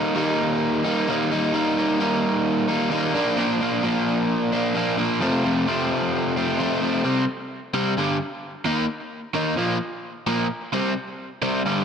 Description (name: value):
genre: rock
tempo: 130 BPM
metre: 4/4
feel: straight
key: unclear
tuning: A4 = 440 Hz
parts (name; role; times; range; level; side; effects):
- overdriven electric guitar; solo; 0.0-11.8 s; F2 to Eb4; -21 LUFS; equal; spring reverb, tape echo
room: light reverb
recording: none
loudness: -20 LUFS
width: side -7 dB against mid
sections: 0.0-7.1 A section; 7.1-11.8 B section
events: none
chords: 0.0 Eb; 3.2 Bb; 5.2 F; 7.1 C5; 8.0 G5; 8.7 Eb5; 9.6 Bb5; 10.7 C5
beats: 0.16 0.62 1.08 | 1.54 2.00 2.46 2.92 | 3.38 3.84 4.30 4.76 | 5.22 5.68 6.14 6.60 | 7.06 7.52 7.98 8.44 | 8.90 9.36 9.82 10.28 | 10.74 11.21 11.67